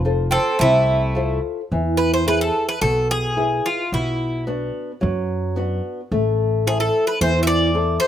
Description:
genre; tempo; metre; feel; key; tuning
greek folk, Greek bouzouki band; 109 BPM; 4/4; straight; unclear; A4 = 440 Hz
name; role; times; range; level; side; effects
flamenco guitar; accompaniment; 0.0-8.1 s; B2 to C5; -22 LUFS; left 1 dB; slapback echo
upright bass; bass; 0.0-8.0 s; F1 to F#2; -22 LUFS; equal; none
Greek bouzouki; melody; 0.3-8.1 s; E4 to E5; -20 LUFS; equal; slapback echo
Greek bouzouki; second line; 0.3-1.4 s; A3 to C4; -24 LUFS; right 1 dB; none
room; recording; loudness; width
little or no reverb; recorded outdoors, with no room sound; -18 LUFS; side -10 dB against mid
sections
0.0-1.7 A section; 1.7-8.1 B section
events
none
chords
0.0 F; 1.7 E; 3.9 Bm; 6.1 Am

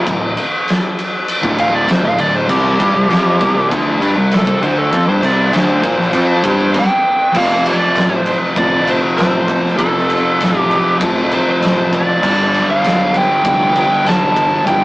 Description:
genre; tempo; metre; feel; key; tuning
stoner and doom metal; 99 BPM; 4/4; straight; unclear; A4 = 440 Hz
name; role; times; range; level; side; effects
thick fuzz guitar; riff; 0.0-14.8 s; D2 to G4; -17 LUFS; left 1 dB; distortion
thick fuzz guitar; riff; 0.0-14.8 s; D2 to G4; -25 LUFS; right 1 dB; none
fuzz picked electric bass; bass; 0.0-14.8 s; D1 to Bb2; -21 LUFS; equal; overdrive
oversized low-tuned drum kit; drums; 0.1-14.8 s; crash cymbal, kick drum, ride cymbal, snare drum; -17 LUFS; equal; none
fuzz lead guitar; melody; 1.6-14.8 s; G4 to A5; -16 LUFS; right 1 dB; distortion
room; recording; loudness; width
light reverb; rough rehearsal-room recording, small speaker sound; -12 LUFS; side -20 dB against mid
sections
0.0-7.3 A section; 7.3-14.8 B section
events
lead electric guitar solo 0.0-7.3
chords
0.0 Dm; 2.5 C5; 7.3 F; 12.2 G

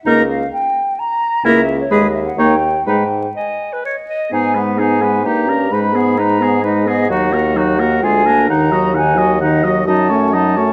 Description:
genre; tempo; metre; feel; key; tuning
quick classical-period movement for wind quintet; 130 BPM; 3/4; straight; G# minor; A4 = 440 Hz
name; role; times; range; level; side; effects
concert flute; melody; 0.1-10.7 s; C#5 to B5; -21 LUFS; equal; none
warm oboe; second line; 0.1-10.7 s; F#4 to F#5; -22 LUFS; equal; none
bright clarinet; accompaniment; 0.1-10.7 s; B3 to D#5; -23 LUFS; equal; none
warm French horn; accompaniment; 0.1-10.7 s; D#3 to C#4; -21 LUFS; equal; none
mellow bassoon; bass; 0.1-10.7 s; C#2 to G#2; -21 LUFS; equal; none
room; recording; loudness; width
moderate recital hall reverb, RT60 1.6 s; close, detailed microphones, vinyl crackle; -15 LUFS; mono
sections
0.0-4.3 A section; 4.3-10.7 B section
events
none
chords
0.1 D#7/C#; 1.4 A#dim/C#; 1.9 G#m/D#; 2.4 D#7; 2.9 G#5; 4.3 G#m; 5.2 D#7/G; 5.7 G#m; 7.1 D#m; 8.0 A#7/D; 8.5 D#m; 9.9 D#m7b5/F#

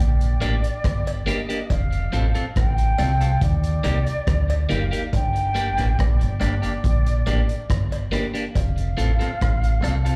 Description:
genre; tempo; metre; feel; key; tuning
roots reggae; 70 BPM; 4/4; straight; G minor; A4 = 440 Hz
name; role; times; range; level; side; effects
mellow concert flute; melody; 0.0-10.2 s; D5 to G5; -32 LUFS; equal; tape echo, slapback echo
deep dub fingered electric bass; bass; 0.0-10.2 s; F1 to Eb2; -23 LUFS; equal; none
crunchy breakbeat drum kit; drums; 0.2-10.2 s; hi-hat, kick drum, rim click; -28 LUFS; equal; none
electric guitar at the edge of break-up; accompaniment; 0.4-10.2 s; Bb3 to A4; -31 LUFS; equal; phaser, tape echo, slapback echo
cowbell; percussion; 0.4-10.0 s; none; -38 LUFS; equal; slapback echo
room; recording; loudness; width
small room ambience; live gig heard through the venue's PA, club reverb; -22 LUFS; mono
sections
0.0-10.2 A section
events
none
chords
0.0 Gm; 1.7 F; 3.4 Eb; 5.1 Gm; 8.6 F

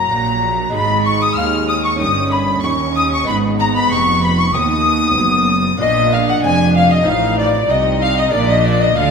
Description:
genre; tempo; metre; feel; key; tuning
classical, baroque-style concerto movement with solo episodes; 95 BPM; 4/4; straight; unclear; A4 = 440 Hz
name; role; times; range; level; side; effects
baroque flute; melody; 0.0-9.1 s; D5 to Eb6; -19 LUFS; left 3 dB; none
rich chamber violin section; melody; 0.0-9.1 s; D5 to F6; -21 LUFS; left 3 dB; none
warm studio violin section; second line; 0.0-9.1 s; D5 to F6; -20 LUFS; left 3 dB; none
dark chamber viola section; accompaniment; 0.0-9.1 s; Gb3 to Eb4; -22 LUFS; right 1 dB; none
lute; accompaniment; 0.0-9.1 s; Eb2 to Bb4; -26 LUFS; left 1 dB; none
rich chamber cello section; bass; 0.0-9.1 s; Eb2 to D3; -20 LUFS; right 3 dB; none
rich chamber double bass section; bass; 0.0-9.1 s; F1 to Eb2; -22 LUFS; right 5 dB; none
room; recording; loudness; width
wet concert hall reverb, RT60 2.1 s; minimal, uncompressed stereo recording; -13 LUFS; side -5 dB against mid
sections
0.0-9.1 A section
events
none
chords
0.0 Ebm; 0.7 Ab5; 2.0 Eb7/G; 3.3 Abm; 5.8 Bb; 7.1 F7/A; 8.3 Bb

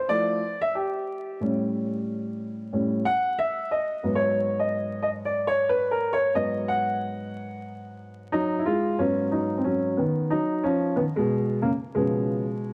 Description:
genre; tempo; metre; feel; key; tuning
hip hop; 91 BPM; 4/4; swing 60% on 16ths; G# dorian; A4 = 437 Hz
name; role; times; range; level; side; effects
dark grand piano; solo; 0.0-12.7 s; G#2 to F#5; -26 LUFS; equal; none
room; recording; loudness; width
light reverb, small room ambience; worn, warbling old tape, cassette tape, vinyl crackle, warbly pitch drift; -26 LUFS; mono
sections
0.0-9.0 A section; 9.0-12.7 B section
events
grand piano solo 0.0-9.0, 9.0-12.7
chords
0.0 Fmaj7; 1.1 A7; 3.7 G#m7; 11.6 C#7

